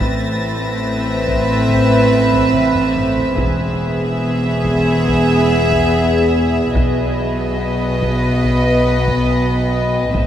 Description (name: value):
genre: cinematic, suspense film score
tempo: 71 BPM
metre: 4/4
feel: straight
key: unclear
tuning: A4 = 440 Hz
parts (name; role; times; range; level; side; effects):
- warm studio violin section; melody; 0.0-10.3 s; D#5 to E5; -22 LUFS; left 1 dB; none
- warm studio violin section; second line; 0.0-10.3 s; G#4 to B4; -20 LUFS; equal; none
- warm studio viola section; accompaniment; 0.0-10.3 s; B3 to C4; -20 LUFS; equal; none
- warm studio cello section; bass; 0.0-10.3 s; E2 to B2; -22 LUFS; right 1 dB; none
- warm studio double bass section; bass; 0.0-10.3 s; E1 to B1; -22 LUFS; equal; none
- overtone-sweeping drone; drone; 0.0-10.3 s; A1 to E2; -25 LUFS; equal; chorus, built-in reverb
- taiko ensemble; drums; 0.0-10.3 s; none; -24 LUFS; equal; none
- warm studio violin section; texture; 0.0-2.9 s; A6 to Bb6; -31 LUFS; left 1 dB; none
room: wet huge ambient reverb, RT60 7.6 s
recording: in a vast, echoing space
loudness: -13 LUFS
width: side -10 dB against mid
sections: 0.0-10.3 A section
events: drum fill 2.5-3.4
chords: 0.0 Amadd9; 3.4 E; 6.8 B